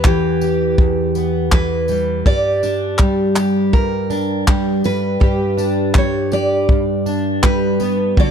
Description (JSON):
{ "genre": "acoustic pop", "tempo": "81 BPM", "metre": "4/4", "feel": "swing 55% on 16ths", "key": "unclear", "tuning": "A4 = 440 Hz", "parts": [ { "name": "picked steel-string acoustic guitar", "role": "melody", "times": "0.0-8.3 s", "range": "G4 to D5", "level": "-22 LUFS", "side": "right 1 dB", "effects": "none" }, { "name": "fingerpicked plugged-in steel-string acoustic guitar", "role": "accompaniment", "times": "0.0-8.3 s", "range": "E2 to G4", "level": "-17 LUFS", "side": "equal", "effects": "double-tracked left and right" }, { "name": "natural country drum kit", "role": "drums", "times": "0.0-8.3 s", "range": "handclaps, kick drum, tambourine", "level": "-15 LUFS", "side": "equal", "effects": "none" } ], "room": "small room reverb", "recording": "dry, close 1970s-style studio recording", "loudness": "-14 LUFS", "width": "side -7 dB against mid", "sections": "0.0-8.3 A section", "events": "none", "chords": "0.0 Em; 2.3 Gm" }